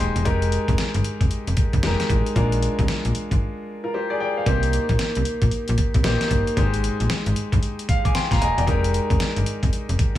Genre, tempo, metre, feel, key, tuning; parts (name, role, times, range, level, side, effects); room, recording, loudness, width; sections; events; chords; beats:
R&B, new jack swing; 114 BPM; 4/4; swing 62% on 16ths; A4 = 440 Hz
clear baby grand piano; accompaniment; 0.0-10.2 s; Ab3 to D6; -24 LUFS; left 1 dB
slap-like FM bass; bass; 0.0-10.2 s; Eb1 to C2; -22 LUFS; equal
dusty soul sampler-style drum kit; drums; 0.2-10.2 s; hi-hat, kick drum, snare drum; -23 LUFS; equal
little or no reverb; small room ambience; -19 LUFS; side -13 dB against mid
0.0-10.2 A section
grand piano fill 0.0, 7.6-8.7; break 3.4-4.5
0.3 Fm11; 2.4 Bb7; 4.5 Cm7; 6.6 Abmaj7; 8.7 Fm11
| 0.25 0.78 1.31 1.83 | 2.36 2.88 3.41 3.94 | 4.46 4.99 5.52 6.04 | 6.57 7.10 7.62 8.15 | 8.68 9.20 9.73